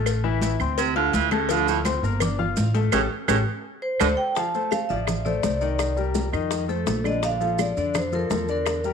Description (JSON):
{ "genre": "Afro-Cuban jazz", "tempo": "168 BPM", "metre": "4/4", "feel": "straight", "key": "D minor", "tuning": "A4 = 436 Hz", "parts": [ { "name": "warm concert grand piano", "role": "accompaniment", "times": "0.0-8.9 s", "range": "D3 to F6", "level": "-28 LUFS", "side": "left 9 dB", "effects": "none" }, { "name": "upright bass", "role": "bass", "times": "0.0-8.9 s", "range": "G1 to F2", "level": "-27 LUFS", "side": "right 1 dB", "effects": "none" }, { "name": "claves", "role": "percussion", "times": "0.1-8.8 s", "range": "none", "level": "-33 LUFS", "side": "right 13 dB", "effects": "none" }, { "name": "congas", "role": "percussion", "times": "0.1-8.9 s", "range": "none", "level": "-30 LUFS", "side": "equal", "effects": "none" }, { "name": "cowbell and bongos", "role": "percussion", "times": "0.1-8.9 s", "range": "none", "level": "-31 LUFS", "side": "left 12 dB", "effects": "none" }, { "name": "maracas", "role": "percussion", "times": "0.1-8.9 s", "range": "none", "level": "-38 LUFS", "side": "right 14 dB", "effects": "none" }, { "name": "clear baritone saxophone", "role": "second line", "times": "0.8-4.1 s", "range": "A2 to E3", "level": "-24 LUFS", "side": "right 12 dB", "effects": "none" }, { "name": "vibraphone with medium hard mallets", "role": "melody", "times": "3.8-8.8 s", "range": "A4 to A5", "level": "-26 LUFS", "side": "right 2 dB", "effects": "none" } ], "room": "moderate echo chamber reverb, RT60 1.3 s, small room ambience", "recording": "1960s-style stereo with parts hard left and right", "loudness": "-21 LUFS", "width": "side -6 dB against mid", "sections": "0.0-4.4 A section; 4.4-8.9 B section", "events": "baritone saxophone solo 0.0-4.4; band accent 2.9-4.4", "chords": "0.1 A5; 0.8 Dm7; 2.2 G5; 2.9 A7; 3.6 D5; 4.4 Dm7; 5.8 Cm9; 6.5 F7; 7.2 Bbmaj7" }